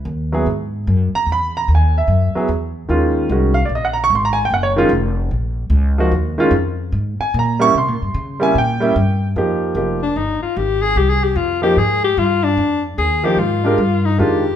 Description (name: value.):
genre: jazz.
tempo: 148 BPM.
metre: 4/4.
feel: swing 65% on 8ths.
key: F dorian from 9.3 s.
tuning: A4 = 440 Hz.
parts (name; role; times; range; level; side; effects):
upright bass; bass; 0.0-14.6 s; E#1 to Db3; -18 LUFS; equal; none.
warm grand piano; accompaniment; 0.3-14.4 s; D#3 to C#6; -17 LUFS; right 2 dB; none.
breathy alto saxophone; second line; 10.0-14.6 s; D4 to Ab4; -17 LUFS; left 5 dB; none.
room: moderate large studio reverb, RT60 1.2 s.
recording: minimal, uncompressed stereo recording.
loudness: -15 LUFS.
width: side -10 dB against mid.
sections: 0.0-9.3 A section; 9.3-14.6 A section.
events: alto saxophone solo 9.3-14.6.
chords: 0.0 C#m9 (rootless); 2.9 D#m9; 7.7 C7b9; 9.3 Fm11.